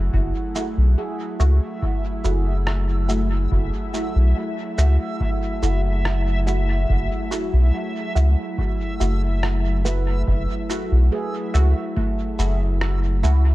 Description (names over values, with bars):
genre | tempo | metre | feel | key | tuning
ambient dub | 71 BPM | 4/4 | straight | F# minor | A4 = 440 Hz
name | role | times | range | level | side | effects
airy breathy pad | sustained chords | 0.0-13.5 s | F#3 to F#5 | -30 LUFS | right 1 dB | chorus
soft dub sub bass | bass | 0.0-13.5 s | F#1 to C#2 | -18 LUFS | equal | none
handpan | arpeggios | 0.1-3.0, 9.8-13.5 s | A3 to B4 | -33 LUFS | right 4 dB | dub echo
electronic kick drum | drums | 0.1-12.1 s | none | -26 LUFS | equal | small room ambience
backwards swelling texture | texture | 0.9-13.5 s | E5 | -34 LUFS | equal | built-in reverb
filtered dub chord stab | stabs | 0.6-13.4 s | A3 to F#4 | -30 LUFS | right 1 dB | phaser, lush chorus, dub echo
electronic shaker and rim click | drums | 0.6-13.4 s | none | -32 LUFS | equal | small room ambience, dub echo
room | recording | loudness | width
digital ambience | echo-heavy mix | -19 LUFS | side -17 dB against mid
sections
0.0-13.5 A section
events
none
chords
0.0 F#m7